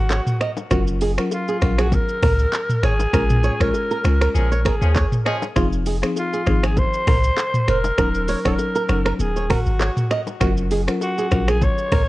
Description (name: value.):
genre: afrobeats.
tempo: 99 BPM.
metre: 4/4.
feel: swing 55% on 16ths.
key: Eb dorian.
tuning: A4 = 440 Hz.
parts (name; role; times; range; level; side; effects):
growling alto saxophone; melody; 0.0-12.1 s; F4 to Db5; -25 LUFS; equal; ping-pong delay.
punchy sub bass; bass; 0.0-12.1 s; Eb1 to Eb2; -20 LUFS; equal; none.
flamenco guitar; riff; 0.1-12.0 s; F4 to Eb5; -26 LUFS; right 4 dB; ping-pong delay.
afro-pop drum kit; drums; 0.1-12.1 s; finger snaps, handclaps, hi-hat, kick drum, rim click, shaker, toms; -22 LUFS; equal; none.
bongos and congas; percussion; 0.1-12.1 s; none; -32 LUFS; left 4 dB; none.
buzzing marimba with medium mallets; accompaniment; 0.7-11.6 s; F3 to Bb4; -26 LUFS; left 2 dB; none.
clear horn section; second line; 4.3-5.4 s; F3 to Ab4; -28 LUFS; left 1 dB; none.
room: small room ambience.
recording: worn, warbling old tape, cassette tape, warbly pitch drift, nothing above 10.5 kHz.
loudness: -17 LUFS.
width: side -18 dB against mid.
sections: 0.0-12.1 A section.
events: band accent 3.1-5.6.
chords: 0.0 Ebm7; 0.7 Gbmaj7; 3.1 Bbm7; 5.6 Fm7; 8.0 Ebm7; 10.4 Gbmaj7.